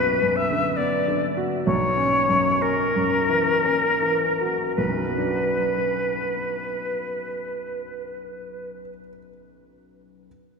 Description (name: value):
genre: classical, romantic duo for flute and grand piano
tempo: 50-72 BPM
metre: 3/4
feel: rubato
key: B minor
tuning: A4 = 440 Hz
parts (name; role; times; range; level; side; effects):
- silver concert flute; melody; 0.0-8.8 s; A#4 to E5; -22 LUFS; left 2 dB; none
- dark grand piano; accompaniment; 0.0-10.3 s; B1 to F#4; -26 LUFS; right 1 dB; none
room: wet cathedral reverb, RT60 4.2 s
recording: recorded in a church or concert hall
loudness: -20 LUFS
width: side -5 dB against mid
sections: 0.0-4.8 A section; 4.8-8.1 B section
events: slowing down 0.0-4.8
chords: 0.0 Bm; 1.7 F#7/B; 4.8 Bm